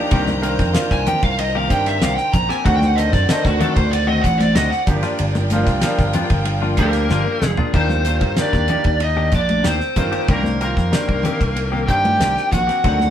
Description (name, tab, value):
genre	electric jazz fusion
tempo	94 BPM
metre	4/4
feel	straight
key	unclear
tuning	A4 = 440 Hz
part	bright baby grand piano	accompaniment	0.0-13.1 s	Eb3 to Bb4	-24 LUFS	equal	none
part	rich studio string section	sustained chords	0.0-7.7 s	F4 to Bb5	-27 LUFS	left 2 dB	none
part	clean electric guitar	stabs	0.0-13.0 s	Eb3 to G4	-26 LUFS	left 4 dB	none
part	vintage slap bass	bass	0.1-13.1 s	F1 to G2	-21 LUFS	equal	none
part	damped 70s drum kit	drums	0.1-13.1 s	crash cymbal, hi-hat, kick drum, ride cymbal, snare drum, toms	-22 LUFS	equal	none
part	congas	percussion	0.3-13.1 s	none	-25 LUFS	left 2 dB	none
part	lead guitar through a small cranked amp	melody	0.9-13.1 s	F#4 to Bb5	-21 LUFS	right 1 dB	overdrive
part	bright tenor saxophone	second line	6.8-13.1 s	Bb3 to G4	-26 LUFS	left 4 dB	none
room	moderate studio reverb, RT60 0.6 s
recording	band playing live in one room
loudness	-15 LUFS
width	side -10 dB against mid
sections	0.0-7.7 A section; 7.7-13.1 B section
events	lead electric guitar solo 0.0-7.7; drum fill 7.1-7.7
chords	0.1 Cm7; 2.7 D7b9; 4.9 Gm7; 7.7 Ebmaj7; 10.3 Cm7